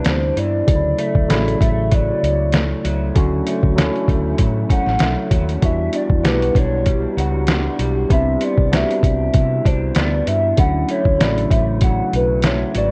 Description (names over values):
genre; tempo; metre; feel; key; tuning
indie pop, bedroom pop; 97 BPM; 4/4; swing 55% on 16ths; D major; A4 = 441 Hz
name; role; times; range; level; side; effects
warbly nostalgic lead; melody; 0.0-12.9 s; B4 to F#5; -25 LUFS; equal; lush chorus, tape echo
barky tine electric piano; accompaniment; 0.0-12.9 s; C#3 to G4; -26 LUFS; equal; overdrive, cassette tape
electric guitar through a small old amp; accompaniment; 0.0-12.9 s; C3 to F#4; -28 LUFS; equal; lush chorus, vibrato effect
lo-fi sampler-style drum kit; drums; 0.0-12.9 s; hi-hat, kick drum, snare drum; -20 LUFS; equal; overdrive
vintage muted fingered electric bass; bass; 0.1-12.9 s; G#1 to C3; -23 LUFS; equal; none
room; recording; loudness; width
light reverb, digital ambience; worn, warbling old tape, cassette tape, warbly pitch drift; -17 LUFS; mono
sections
0.0-12.9 A section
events
none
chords
0.0 Cmaj9; 0.7 Dmaj7; 5.6 Em9; 8.1 Cmaj9; 10.6 Dmaj7